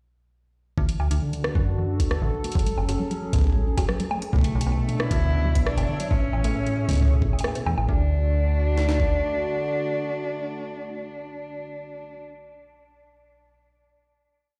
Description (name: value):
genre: IDM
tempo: 135 BPM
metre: 4/4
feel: straight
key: D lydian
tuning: A4 = 441 Hz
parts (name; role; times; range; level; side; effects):
- hollow soft pad; sustained chords; 0.8-12.2 s; A2 to D5; -34 LUFS; equal; chorus
- warbly dusty pluck; arpeggios; 0.8-8.1 s; G#2 to F#4; -34 LUFS; equal; chorus, tape echo
- metallic FM bass; bass; 0.8-9.2 s; F#1 to F#2; -26 LUFS; equal; none
- jungle sampler-style drum kit; drums; 0.8-9.1 s; kick drum, snare drum; -26 LUFS; equal; overdrive, studio reverb
- booming analog drum machine; drums; 0.9-7.9 s; bongos, hi-hat, rim click; -34 LUFS; equal; studio reverb
- dark cello; melody; 4.3-12.2 s; A3 to E4; -32 LUFS; equal; vintage 12-bit sampler grit, dub echo
- flickering grainy texture; texture; 4.8-7.9 s; E5; -44 LUFS; equal; built-in reverb, sidechain pumping
room: light reverb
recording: played on a big sound system in a bare room, stone room reverb, faint mains hum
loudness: -24 LUFS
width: mono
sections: 0.8-7.9 groove; 7.9-11.4 final chord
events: filter sweep on synth pluck 0.8-7.9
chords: 0.8 D; 2.6 F#madd9; 4.3 Bmadd9; 6.1 Amaj7; 7.9 D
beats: | 0.78 1.22 1.67 2.11 | 2.55 3.00 3.44 3.89 | 4.33 4.78 5.22 5.67 | 6.11 6.55 7.00 7.44 | 7.89 8.33 8.78 9.22 | 9.66 10.11 10.55 11.00